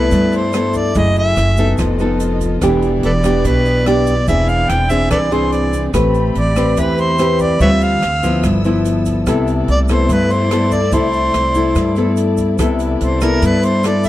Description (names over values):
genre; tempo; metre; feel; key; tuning
bossa nova; 144 BPM; 4/4; straight; C major; A4 = 441 Hz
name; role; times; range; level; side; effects
mellow harmonica; melody; 0.0-14.1 s; A4 to G5; -18 LUFS; right 1 dB; slapback echo
nylon-string guitar; accompaniment; 0.0-14.1 s; G2 to B4; -16 LUFS; left 1 dB; none
warm chamber string section; sustained chords; 0.0-14.1 s; A3 to E6; -26 LUFS; right 1 dB; none
upright bass; bass; 0.0-14.1 s; E1 to G2; -18 LUFS; right 1 dB; none
open jazz drum kit; drums; 0.1-14.1 s; hi-hat, kick drum, rim click; -24 LUFS; equal; none
egg shaker; percussion; 0.1-14.1 s; none; -36 LUFS; right 18 dB; none
room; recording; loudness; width
little or no reverb; dry, close 1970s-style studio recording; -12 LUFS; side -14 dB against mid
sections
0.0-12.6 A section; 12.6-14.1 B section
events
harmonica solo 12.6-14.1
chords
0.0 Cmaj13; 1.0 F#m9; 1.8 F7#11; 2.6 Em7; 4.3 Eaug7; 5.9 Am9; 7.6 Dm11; 8.4 G13; 9.3 Cmaj13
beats
0.12 0.54 | 0.95 1.37 1.78 2.20 | 2.62 3.03 3.45 3.86 | 4.28 4.69 5.11 5.53 | 5.94 6.36 6.77 7.19 | 7.60 8.02 8.44 8.85 | 9.27 9.68 10.10 10.51 | 10.93 11.34 11.76 12.18 | 12.59 13.01 13.42 13.84